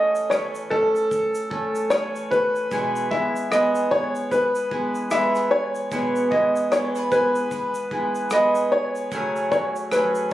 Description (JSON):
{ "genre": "acoustic pop", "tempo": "75 BPM", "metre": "4/4", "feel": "swing 60% on 16ths", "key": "E major", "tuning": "A4 = 439 Hz", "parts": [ { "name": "clear upright piano", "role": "melody", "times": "0.0-10.3 s", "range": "A4 to E5", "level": "-21 LUFS", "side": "equal", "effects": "slapback echo" }, { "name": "fingerpicked steel-string acoustic guitar", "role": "accompaniment", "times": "0.0-10.3 s", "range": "E2 to A4", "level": "-26 LUFS", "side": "equal", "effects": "none" }, { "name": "unplugged drum kit", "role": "drums", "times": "0.2-10.3 s", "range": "kick drum, rim click, shaker", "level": "-34 LUFS", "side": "equal", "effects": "none" }, { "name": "bowl-back mandolin", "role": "arpeggios", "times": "2.7-10.3 s", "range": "A3 to G#5", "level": "-30 LUFS", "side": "right 1 dB", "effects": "none" } ], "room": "light reverb", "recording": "recorded on a phone in the room, studio reverb, compression", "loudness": "-20 LUFS", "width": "side -14 dB against mid", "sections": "0.0-10.3 A section", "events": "none", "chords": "0.0 A; 2.7 E; 9.1 F#madd9" }